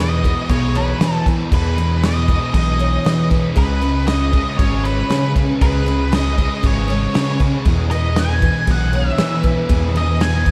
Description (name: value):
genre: rock, shoegaze and dream pop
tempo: 118 BPM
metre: 4/4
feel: straight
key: E major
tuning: A4 = 440 Hz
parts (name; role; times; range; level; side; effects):
- octave-fuzz lead guitar; melody; 0.0-10.5 s; B4 to G#5; -26 LUFS; equal; distortion, delay
- picked twelve-string acoustic guitar; arpeggios; 0.0-10.5 s; G#4 to C#5; -31 LUFS; equal; lush chorus, delay
- thick fuzz guitar; riff; 0.0-10.5 s; E2 to C#4; -24 LUFS; equal; distortion, lush chorus
- twangy electric guitar; riff; 0.0-10.5 s; C#3 to E4; -40 LUFS; equal; none
- growling fingered electric bass; bass; 0.0-10.5 s; G#1 to E3; -21 LUFS; equal; overdrive
- loose indie drum kit; drums; 0.2-10.5 s; crash cymbal, kick drum, snare drum; -22 LUFS; equal; none
room: light reverb, studio reverb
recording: none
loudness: -17 LUFS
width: mono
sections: 0.0-10.5 A section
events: none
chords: 0.0 Emaj7; 3.6 C#m7; 7.7 Emaj7